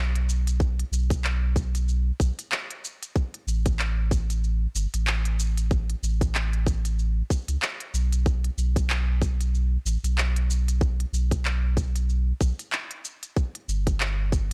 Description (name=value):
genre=organic downtempo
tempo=94 BPM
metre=4/4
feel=swing 57% on 16ths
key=unclear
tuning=A4 = 440 Hz
part: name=warm sub bass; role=bass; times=0.0-14.5 s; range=G1 to C#2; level=-26 LUFS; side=equal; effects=none
part: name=organic electronic drum kit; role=drums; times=0.2-14.5 s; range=handclaps, hi-hat, shaker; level=-33 LUFS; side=equal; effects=none
part: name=electronic kick drum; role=drums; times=0.6-14.5 s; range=none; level=-26 LUFS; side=equal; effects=none
room=little or no reverb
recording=dry, gritty hardware recording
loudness=-26 LUFS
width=mono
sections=0.0-14.5 A section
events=none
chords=none